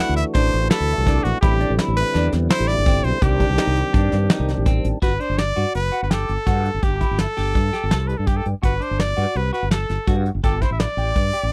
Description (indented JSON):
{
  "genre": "progressive instrumental, band music in an uneven meter",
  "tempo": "166 BPM",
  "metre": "5/4",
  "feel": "straight",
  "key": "G major",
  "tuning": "A4 = 440 Hz",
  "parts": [
    { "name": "brilliant trumpet", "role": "melody", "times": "0.0-11.5 s", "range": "F#4 to F#5", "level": "-26 LUFS", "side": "equal", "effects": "none" },
    { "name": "percussive tonewheel organ", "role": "accompaniment", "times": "0.0-5.0 s", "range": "D3 to F#4", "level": "-29 LUFS", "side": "equal", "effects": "overdrive, slow rotary speaker" },
    { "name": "clean electric guitar", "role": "arpeggios", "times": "0.0-11.4 s", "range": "C4 to A4", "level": "-30 LUFS", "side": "equal", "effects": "phaser" },
    { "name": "fretless electric bass", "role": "bass", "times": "0.1-11.5 s", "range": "F#1 to G2", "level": "-24 LUFS", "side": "equal", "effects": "ensemble chorus" },
    { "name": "soft brush drum kit", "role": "drums", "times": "0.2-11.4 s", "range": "hi-hat, kick drum, snare drum", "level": "-22 LUFS", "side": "equal", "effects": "none" }
  ],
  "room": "little or no reverb",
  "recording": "dry, close 1970s-style studio recording",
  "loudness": "-20 LUFS",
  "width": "mono",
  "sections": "0.0-5.0 A section; 5.0-11.5 B section",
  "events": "none",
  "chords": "0.0 D7; 1.4 Am7; 3.2 Cmadd9; 5.0 G5; 6.8 A7(no3)/G; 8.6 D/G; 10.4 C69/G (rootless)"
}